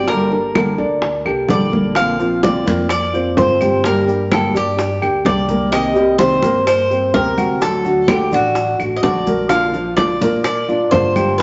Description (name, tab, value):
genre	latin, Cuban son and guajira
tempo	127 BPM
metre	4/4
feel	straight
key	G minor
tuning	A4 = 440 Hz
part	Cuban tres	melody	0.0-11.4 s	F#4 to F5	-21 LUFS	equal	none
part	nylon-string guitar	accompaniment	0.0-11.4 s	C3 to A4	-22 LUFS	equal	none
part	dark concert grand piano	arpeggios	0.0-11.4 s	F3 to G5	-23 LUFS	equal	none
part	upright bass	bass	0.0-11.4 s	G1 to Bb2	-29 LUFS	equal	none
part	bongos	percussion	0.1-11.4 s	none	-25 LUFS	equal	none
part	congas	percussion	0.1-11.4 s	none	-25 LUFS	equal	none
part	claves	percussion	0.6-11.4 s	none	-31 LUFS	equal	none
part	maracas	percussion	2.0-11.4 s	none	-42 LUFS	equal	none
room	wet large studio reverb, RT60 1.2 s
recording	nothing above 7.7 kHz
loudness	-16 LUFS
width	mono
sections	0.0-11.4 A section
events	none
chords	0.1 Gmadd9; 2.0 Bbadd9; 3.8 Gm; 5.7 Cm7; 7.6 D; 9.5 Bb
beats	| 0.08 0.55 1.02 1.49 | 1.96 2.43 2.90 3.37 | 3.84 4.31 4.79 5.26 | 5.73 6.20 6.67 7.14 | 7.62 8.09 8.56 9.04 | 9.51 9.98 10.46 10.93 | 11.40